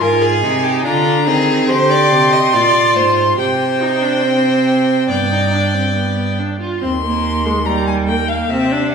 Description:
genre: classical, baroque-style fugue for string quartet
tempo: 71 BPM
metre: 4/4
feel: straight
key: C minor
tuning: A4 = 440 Hz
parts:
  - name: rich violin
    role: melody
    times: 0.0-8.9 s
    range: E5 to C6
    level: -18 LUFS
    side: left 2 dB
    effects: none
  - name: rich violin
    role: second line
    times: 0.0-6.4 s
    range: F4 to Eb5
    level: -18 LUFS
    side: equal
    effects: none
  - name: rich viola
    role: accompaniment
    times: 0.0-8.9 s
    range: G3 to G4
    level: -18 LUFS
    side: right 1 dB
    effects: none
  - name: rich cello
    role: bass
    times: 0.0-8.9 s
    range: Eb2 to Eb3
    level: -19 LUFS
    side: right 3 dB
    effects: none
room: wet recital hall reverb, RT60 1.4 s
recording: recorded in a church or concert hall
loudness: -12 LUFS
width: side -6 dB against mid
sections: 0.0-6.8 A section; 6.8-8.9 B section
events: none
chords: 0.0 Fm/Ab; 3.4 Gsus4/C; 5.1 G; 6.8 Cm/Eb

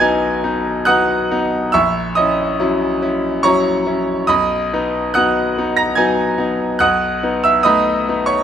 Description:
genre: classical, romantic nocturne for solo piano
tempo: 70 BPM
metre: 3/4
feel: rubato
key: B major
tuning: A4 = 440 Hz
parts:
  - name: bright grand piano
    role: solo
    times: 0.0-8.4 s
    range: A#1 to A#6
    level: -14 LUFS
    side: equal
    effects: none
room: light reverb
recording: close, detailed microphones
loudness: -14 LUFS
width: side -9 dB against mid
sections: 0.0-8.4 A section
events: none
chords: 0.0 B; 1.7 F#7/A#; 4.3 B; 6.8 B7

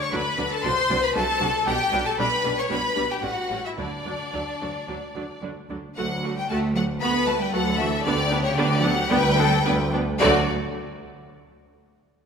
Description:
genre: quick classical-period movement for string orchestra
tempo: 113 BPM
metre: 4/4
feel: uneven beats, rubato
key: D major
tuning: A4 = 438 Hz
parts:
  - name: bright symphonic violin section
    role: melody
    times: 0.0-10.5 s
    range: C#5 to C#6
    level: -26 LUFS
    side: left 3 dB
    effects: none
  - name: clear symphonic violin section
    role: second line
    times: 0.0-10.5 s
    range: D4 to D5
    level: -26 LUFS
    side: left 3 dB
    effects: none
  - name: clear symphonic viola section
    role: accompaniment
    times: 0.1-10.5 s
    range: F#3 to F#4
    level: -29 LUFS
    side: right 2 dB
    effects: none
  - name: rich symphonic cello section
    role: bass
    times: 0.1-10.5 s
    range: A2 to B3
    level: -29 LUFS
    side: right 3 dB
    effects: none
  - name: rich symphonic double bass section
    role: bass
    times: 0.1-10.5 s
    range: A1 to D2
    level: -29 LUFS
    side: right 2 dB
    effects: none
room: wet concert hall reverb, RT60 2.3 s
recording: minimal, uncompressed stereo recording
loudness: -20 LUFS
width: side -6 dB against mid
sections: 0.0-6.0 A section; 6.0-10.2 B section; 10.2-12.3 C section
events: none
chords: 0.0 D; 0.6 D7/C; 1.7 G/B; 3.2 A7; 3.8 D; 8.0 G/D; 10.2 D

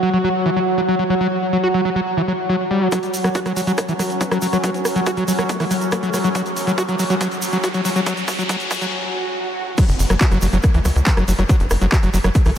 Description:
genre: psychedelic trance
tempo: 140 BPM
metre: 4/4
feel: straight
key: unclear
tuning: A4 = 440 Hz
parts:
  - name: overtone-sweeping drone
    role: sustained chords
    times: 0.0-8.9 s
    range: F#3 to F#4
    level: -23 LUFS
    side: equal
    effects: chorus, built-in reverb, sidechain pumping
  - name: screaming distorted acid line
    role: riff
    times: 0.0-12.5 s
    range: E3 to F#4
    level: -21 LUFS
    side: equal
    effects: distortion, chorus, auto-pan, cassette tape, sidechain pumping, ping-pong delay
  - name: ethereal airy pad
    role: texture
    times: 0.0-8.9 s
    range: F#4 to F#5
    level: -29 LUFS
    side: right 3 dB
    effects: ensemble chorus, built-in reverb, sidechain pumping
  - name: electronic kick drum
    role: drums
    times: 2.9-12.4 s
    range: none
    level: -18 LUFS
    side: equal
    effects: overdrive, high-pass filter on kick
  - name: techno drum kit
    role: drums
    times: 2.9-12.5 s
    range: crash cymbal, handclaps, hi-hat, rim click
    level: -26 LUFS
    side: equal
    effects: overdrive
  - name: egg shaker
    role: percussion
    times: 2.9-12.5 s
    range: none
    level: -32 LUFS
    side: right 4 dB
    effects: none
  - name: riser, swell and downlifter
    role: sound effects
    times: 5.6-12.6 s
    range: none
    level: -29 LUFS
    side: equal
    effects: none
  - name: vowel-sweep wobble bass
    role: second line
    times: 4.2-6.2, 11.1-12.5 s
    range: A3 to B3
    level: -37 LUFS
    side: left 2 dB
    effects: none
  - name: tight sequencer bass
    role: bass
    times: 9.9-12.5 s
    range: F#1 to C#2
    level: -18 LUFS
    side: equal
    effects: none
room: moderate huge ambient reverb, RT60 7.5 s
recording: dreamy mix soaked in reverb, high-pass filter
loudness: -16 LUFS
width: side -9 dB against mid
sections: 0.0-2.9 A section; 2.9-9.8 B section; 9.8-12.6 C section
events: build-up 2.9-9.8; filter sweep on acid bass 2.9-9.8; filter sweep 2.9-9.8; riser 5.6-8.9; drum fill 6.3-8.9; break 8.9-9.8; swell 8.9-9.8; drop 9.8-12.6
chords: 0.0 F#5

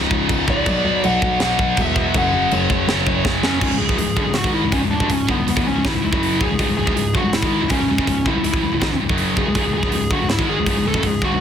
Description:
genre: heavy metal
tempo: 162 BPM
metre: 4/4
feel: straight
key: C# phrygian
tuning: A4 = 436 Hz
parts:
  - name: scooped high-gain guitar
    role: riff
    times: 0.0-11.4 s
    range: C#2 to B3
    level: -23 LUFS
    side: left 11 dB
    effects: distortion
  - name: scooped high-gain guitar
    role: riff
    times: 0.0-11.4 s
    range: C#2 to B3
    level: -23 LUFS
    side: right 11 dB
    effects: distortion
  - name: dark concert grand piano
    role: bass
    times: 0.0-11.4 s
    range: C#1 to B1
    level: -24 LUFS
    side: equal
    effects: none
  - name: tight metal drum kit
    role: drums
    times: 0.1-11.3 s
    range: china cymbal, crash cymbal, hi-hat, kick drum, snare drum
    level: -23 LUFS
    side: right 1 dB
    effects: soft clipping on kick
  - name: high-gain lead guitar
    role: melody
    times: 0.5-11.4 s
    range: B3 to F#5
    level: -22 LUFS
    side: equal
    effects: distortion, ping-pong delay
room: light reverb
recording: dense, heavily limited modern master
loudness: -16 LUFS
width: side -8 dB against mid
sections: 0.0-3.6 A section; 3.6-11.4 B section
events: drum fill 3.3-3.6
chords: 0.0 C#5; 0.7 Bm; 2.1 F#5; 3.6 C#m

